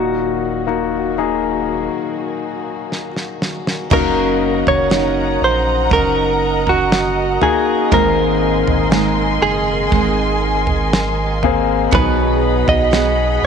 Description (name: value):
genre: pop ballad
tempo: 60 BPM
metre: 4/4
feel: straight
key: unclear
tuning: A4 = 440 Hz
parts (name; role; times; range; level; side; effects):
- direct-recorded clean electric guitar; melody; 0.0-13.4 s; Gb4 to Eb5; -18 LUFS; right 1 dB; wide subtle chorus
- warm concert grand piano; accompaniment; 0.0-13.5 s; Ab2 to Ab4; -20 LUFS; left 10 dB; none
- warm studio string section; sustained chords; 0.0-13.5 s; Eb3 to C6; -23 LUFS; equal; none
- warm sub bass; bass; 0.0-13.5 s; Eb1 to Eb2; -22 LUFS; right 2 dB; none
- damped 70s drum kit; drums; 2.9-13.2 s; crash cymbal, kick drum, snare drum, toms; -20 LUFS; right 2 dB; none
- picked steel-string acoustic guitar; arpeggios; 3.9-13.5 s; Cb3 to Bb4; -23 LUFS; right 14 dB; none
room: light reverb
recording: 1960s-style stereo with parts hard left and right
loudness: -14 LUFS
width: side -6 dB against mid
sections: 0.0-3.9 A section; 3.9-13.5 B section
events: break 1.9-3.9; drum fill 2.9-3.9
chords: 0.0 Ebm; 3.9 Gb6; 7.9 Abadd9; 11.9 Cb6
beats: 0.92 1.92 2.92 | 3.92 4.92 5.92 6.92 | 7.92 8.92 9.92 10.92 | 11.92 12.92